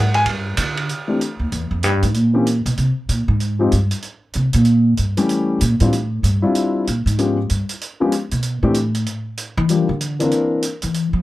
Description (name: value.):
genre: jazz piano trio.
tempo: 191 BPM.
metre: 4/4.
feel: swing 62% on 8ths.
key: unclear.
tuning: A4 = 440 Hz.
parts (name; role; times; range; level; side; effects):
dark grand piano; melody; 0.0-10.6 s; E3 to Ab5; -18 LUFS; left 2 dB; none.
upright bass; bass; 0.0-11.2 s; Eb2 to F3; -17 LUFS; equal; none.
open jazz drum kit; drums; 0.1-11.0 s; hi-hat, kick drum, ride cymbal; -27 LUFS; right 4 dB; none.
room: little or no reverb.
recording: close, detailed microphones.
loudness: -16 LUFS.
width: side -16 dB against mid.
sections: 0.9-11.0 A section.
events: upright bass solo 0.9-11.2.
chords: 0.3 G5; 0.9 C (rootless); 2.1 N.C.; 3.4 Fmadd9 (rootless); 4.7 Edim (rootless); 5.3 A7; 5.9 Dm11; 7.2 Db7#11; 8.4 C6 (rootless); 9.7 Gm7; 10.3 C9.